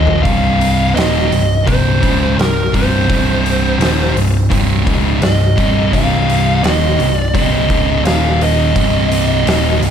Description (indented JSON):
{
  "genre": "stoner and doom metal",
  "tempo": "85 BPM",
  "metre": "4/4",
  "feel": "straight",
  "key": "C minor",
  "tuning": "A4 = 439 Hz",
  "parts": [
    { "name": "fuzz lead guitar", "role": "melody", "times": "0.0-9.8 s", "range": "Bb4 to F5", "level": "-18 LUFS", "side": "right 1 dB", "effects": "distortion, tape echo" },
    { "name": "thick fuzz guitar", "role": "riff", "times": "0.0-9.9 s", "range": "C2 to Eb3", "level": "-18 LUFS", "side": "left 9 dB", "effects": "distortion" },
    { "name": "thick fuzz guitar", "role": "riff", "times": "0.0-9.9 s", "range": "C2 to Eb3", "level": "-18 LUFS", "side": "right 8 dB", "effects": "distortion" },
    { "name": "overdriven picked electric bass", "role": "bass", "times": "0.0-9.9 s", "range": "C1 to Eb1", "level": "-18 LUFS", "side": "equal", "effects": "none" },
    { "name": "oversized low-tuned drum kit", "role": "drums", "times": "0.1-9.9 s", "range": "hi-hat, kick drum, snare drum, toms", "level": "-18 LUFS", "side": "equal", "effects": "none" }
  ],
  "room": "light reverb",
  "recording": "none",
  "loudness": "-11 LUFS",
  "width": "side -8 dB against mid",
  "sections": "0.3-9.9 A section",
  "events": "drum fill 0.0",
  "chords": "0.3 Cm; 8.1 Eb5; 8.8 Cm"
}